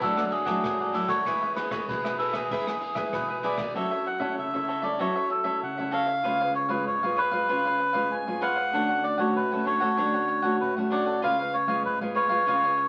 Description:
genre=samba and choro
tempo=96 BPM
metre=4/4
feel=straight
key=F# minor from 3.8 s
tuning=A4 = 441 Hz
part: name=melodica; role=melody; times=0.0-12.9 s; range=G#4 to G#5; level=-28 LUFS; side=equal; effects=none
part: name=cavaquinho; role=accompaniment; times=0.0-12.8 s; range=D4 to F#5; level=-33 LUFS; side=equal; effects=none
part: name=nylon-string guitar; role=accompaniment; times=0.0-12.9 s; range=G#2 to A4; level=-34 LUFS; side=equal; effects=none
part: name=jazz brush drum kit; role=drums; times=0.0-3.7 s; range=kick drum, ride cymbal, rim click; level=-40 LUFS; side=equal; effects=none
room=wet club reverb, RT60 0.7 s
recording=very old 78 rpm record, vinyl crackle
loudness=-26 LUFS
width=mono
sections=0.0-3.8 A section; 3.8-12.9 B section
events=none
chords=0.0 Dadd9; 1.3 E; 3.8 F#m7; 6.2 C#7; 8.7 Dmaj7; 11.2 C#7

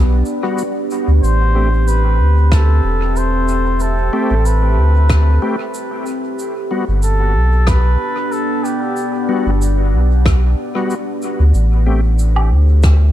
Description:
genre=ambient dub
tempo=93 BPM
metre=4/4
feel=swing 54% on 16ths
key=A dorian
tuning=A4 = 440 Hz
part: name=deep dark ambient pad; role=sustained chords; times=0.0-13.1 s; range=A3 to G5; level=-22 LUFS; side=equal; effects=chorus, built-in reverb
part: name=soft dub sub bass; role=bass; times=0.0-13.1 s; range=E1 to D2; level=-12 LUFS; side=equal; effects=none
part: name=shaker, rim click and woodblock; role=drums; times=0.3-13.0 s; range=none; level=-28 LUFS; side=equal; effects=dub echo
part: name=bright tonewheel organ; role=stabs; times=0.4-12.0 s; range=G3 to G4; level=-24 LUFS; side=left 2 dB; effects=chorus vibrato, low-pass filter, dub echo
part: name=trumpet with cup mute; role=melody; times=1.2-9.3 s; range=G4 to C5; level=-23 LUFS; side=equal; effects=dub echo
part: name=electronic kick drum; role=drums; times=2.5-13.0 s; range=none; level=-15 LUFS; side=equal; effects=none
room=little or no reverb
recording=dark, warm production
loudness=-13 LUFS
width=side -12 dB against mid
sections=0.0-13.1 A section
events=none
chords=0.0 Gmaj7; 1.2 Am7; 6.4 Gmaj7; 11.5 Am7

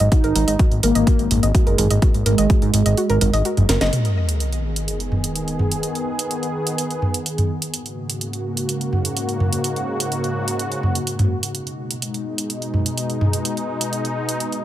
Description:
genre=melodic techno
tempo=126 BPM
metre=4/4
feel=straight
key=G# minor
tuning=A4 = 440 Hz
part: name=mellow synth brass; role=melody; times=0.0-3.8 s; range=G#3 to D#4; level=-24 LUFS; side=right 1 dB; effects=chorus, sidechain pumping, digital delay
part: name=soft round pluck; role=arpeggios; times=0.0-3.9 s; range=F#4 to D#5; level=-26 LUFS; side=right 1 dB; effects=chorus, sidechain pumping, ping-pong delay
part: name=fat analog bass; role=bass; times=0.0-3.9 s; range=F#1 to G#2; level=-18 LUFS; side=equal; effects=sidechain pumping
part: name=house drum kit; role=drums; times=0.0-14.6 s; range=hi-hat, snare drum, toms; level=-23 LUFS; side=right 1 dB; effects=none
part: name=electronic kick drum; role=drums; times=0.1-2.6 s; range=none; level=-16 LUFS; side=equal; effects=none
part: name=sweeping resonant pad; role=sustained chords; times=4.4-14.6 s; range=G#2 to G#4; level=-24 LUFS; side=left 1 dB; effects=chorus, sidechain pumping
part: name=sub drop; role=sound effects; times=3.9-5.8 s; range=none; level=-24 LUFS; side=equal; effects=none
room=light reverb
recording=none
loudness=-18 LUFS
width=side -13 dB against mid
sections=0.0-3.9 A section; 3.9-14.6 B section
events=filter sweep on synth arpeggio sound 0.0-3.9; kick drops out 3.0-3.9; drum fill 3.7; band accent 3.8; impact 3.9-5.8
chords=0.1 D#m; 3.9 G#m; 7.7 F#/G#; 11.5 G#m

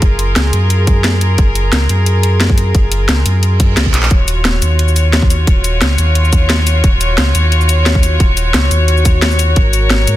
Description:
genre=liquid drum and bass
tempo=176 BPM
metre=4/4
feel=straight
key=unclear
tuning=A4 = 440 Hz
part: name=rich chamber string section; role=sustained chords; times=0.0-10.2 s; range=F4 to Db5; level=-18 LUFS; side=left 1 dB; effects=sidechain pumping
part: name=sub bass with octave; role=bass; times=0.0-10.2 s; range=Eb1 to Ab2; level=-12 LUFS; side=equal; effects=none
part: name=drum and bass drum kit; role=drums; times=0.0-10.1 s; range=cabasa, handclaps, hi-hat, snare drum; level=-16 LUFS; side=left 1 dB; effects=overdrive, studio reverb
part: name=electronic kick drum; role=drums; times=0.0-9.6 s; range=none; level=-11 LUFS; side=equal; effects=overdrive, studio reverb
part: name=reverse cymbal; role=sound effects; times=3.5-4.1 s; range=none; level=-24 LUFS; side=right 7 dB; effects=none
room=little or no reverb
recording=dense, heavily limited modern master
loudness=-10 LUFS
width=side -14 dB against mid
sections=0.0-10.2 A section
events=reverse cymbal 3.5-4.1; drum fill 3.9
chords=0.0 Gbmaj7; 4.1 Ebm9; 9.6 Ab9sus4

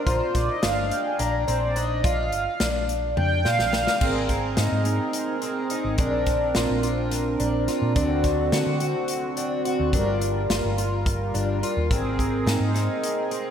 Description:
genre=progressive instrumental, band music in an uneven meter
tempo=213 BPM (eighths)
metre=7/8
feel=straight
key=Bb mixolydian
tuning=A4 = 440 Hz
part: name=chorused pulse-width pad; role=accompaniment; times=0.0-13.5 s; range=D3 to Bb5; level=-26 LUFS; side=right 2 dB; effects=slapback echo
part: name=fingerpicked twelve-string acoustic guitar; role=arpeggios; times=0.0-13.5 s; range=C4 to F#4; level=-28 LUFS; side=left 3 dB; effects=slapback echo
part: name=hollow-body short-scale fingered electric bass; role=bass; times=0.1-12.9 s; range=G1 to D3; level=-26 LUFS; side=equal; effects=none
part: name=natural country drum kit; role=drums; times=0.1-13.4 s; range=crash cymbal, hi-hat, kick drum, snare drum, toms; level=-28 LUFS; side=equal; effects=none
room=wet concert hall reverb, RT60 2.4 s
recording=big arena sound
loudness=-21 LUFS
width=side -8 dB against mid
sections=0.0-4.0 A section; 4.0-13.5 B section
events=analog synth pad solo 0.0-4.0; drum fill 3.2-4.0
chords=0.1 Bb; 4.0 Abadd9; 6.0 Bbadd9; 8.0 D7; 9.9 Gm7; 11.9 Abadd9

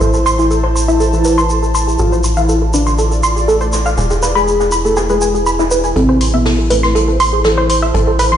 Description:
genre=melodic techno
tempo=121 BPM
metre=4/4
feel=straight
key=A harmonic minor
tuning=A4 = 440 Hz
part: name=tight sequenced synth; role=arpeggios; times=0.0-8.4 s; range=E4 to C6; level=-16 LUFS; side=right 2 dB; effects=chorus, tape echo
part: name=tight sequencer bass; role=bass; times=0.0-8.4 s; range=E1 to A1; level=-16 LUFS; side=equal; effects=none
part: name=jazz brush drum kit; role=drums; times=0.0-8.3 s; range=hi-hat, snare drum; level=-27 LUFS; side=left 1 dB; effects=high-pass filter on hats, low-pass filter on hats, high-pass filter on snare, low-pass filter on snare, high-pass filter on room, low-pass filter on room
part: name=tube shaker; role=percussion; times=0.0-5.9 s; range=none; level=-24 LUFS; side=equal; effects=none
part: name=warbly tape-like pad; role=texture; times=0.0-8.4 s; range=E4 to A5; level=-20 LUFS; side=right 1 dB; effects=chorus, built-in reverb
part: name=fat analog lead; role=melody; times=0.4-8.4 s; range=A3 to A4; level=-18 LUFS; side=left 1 dB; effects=chorus, dub echo
part: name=house drum kit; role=drums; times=6.0-8.3 s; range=hi-hat, toms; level=-24 LUFS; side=left 1 dB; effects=high-pass filter on toms, high-pass filter on hats, high-pass filter on room
room=light reverb, small room ambience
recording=played on a big sound system in a bare room, stone room reverb, nothing above 10.5 kHz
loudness=-11 LUFS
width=side -10 dB against mid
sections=0.0-6.0 A section; 6.0-8.4 B section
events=filter sweep on analog synth lead 0.0-6.0, 6.0-8.4; build-up 6.0-8.4; drum fill 6.0-8.4; filter sweep on synth arpeggio sound 6.0-8.4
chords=0.0 Am; 2.0 Dm/A; 4.0 E; 6.0 Am

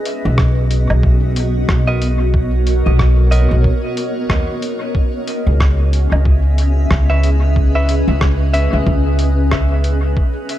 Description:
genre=ambient dub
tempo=92 BPM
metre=4/4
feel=swing 59% on 16ths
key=C# dorian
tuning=A4 = 440 Hz
part: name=granular cloud pad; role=sustained chords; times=0.0-10.6 s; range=B3 to E5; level=-21 LUFS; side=equal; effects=built-in reverb
part: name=lo-fi sampler-style drum kit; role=drums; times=0.1-10.6 s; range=hi-hat, rim click, woodblock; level=-24 LUFS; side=equal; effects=dub echo
part: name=upright bass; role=bass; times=0.3-10.1 s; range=B1 to D#2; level=-14 LUFS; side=equal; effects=none
part: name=electronic kick drum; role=drums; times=0.4-10.3 s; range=none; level=-16 LUFS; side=equal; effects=none
part: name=clean electric guitar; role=stabs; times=1.9-8.8 s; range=B3 to E5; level=-25 LUFS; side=right 1 dB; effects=dub echo
room=little or no reverb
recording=none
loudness=-13 LUFS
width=side -13 dB against mid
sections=0.0-10.6 A section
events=none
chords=0.0 Bmaj7; 5.0 C#m7

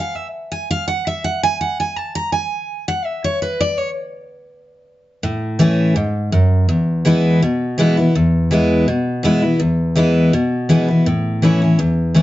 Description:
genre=bluegrass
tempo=165 BPM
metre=4/4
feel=straight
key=A major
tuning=A4 = 440 Hz
part: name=picked steel-string acoustic guitar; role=solo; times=0.0-12.2 s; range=E2 to Bb5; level=-15 LUFS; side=equal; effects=none
room=moderate studio reverb, RT60 0.7 s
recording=dark, warm production, nothing above 7.8 kHz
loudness=-15 LUFS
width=side -15 dB against mid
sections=0.0-5.2 A section; 5.2-12.2 B section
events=steel-string acoustic guitar solo 0.0-5.2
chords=0.0 N.C.; 5.2 A; 6.7 E; 11.1 A

